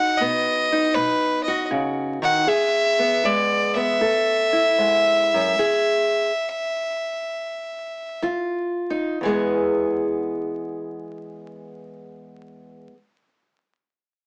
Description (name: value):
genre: acoustic country blues, solo or duo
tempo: 59-80 BPM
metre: 4/4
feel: swing 67% on 8ths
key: E major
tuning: A4 = 441 Hz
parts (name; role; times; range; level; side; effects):
- bright fiddle; melody; 0.0-8.2 s; B4 to F#5; -23 LUFS; equal; none
- fingerpicked old ladder-braced acoustic guitar; accompaniment; 0.0-13.0 s; E2 to A4; -25 LUFS; equal; none
room: moderate studio ambience, RT60 0.5 s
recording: vinyl crackle, small speaker sound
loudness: -22 LUFS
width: mono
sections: 0.0-9.2 A section; 9.2-13.3 B section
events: slowing down 2.5-9.2; stop 5.6-8.2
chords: 0.0 B; 2.5 E; 4.0 A5; 5.6 E; 8.2 D#sus2/E#; 9.2 E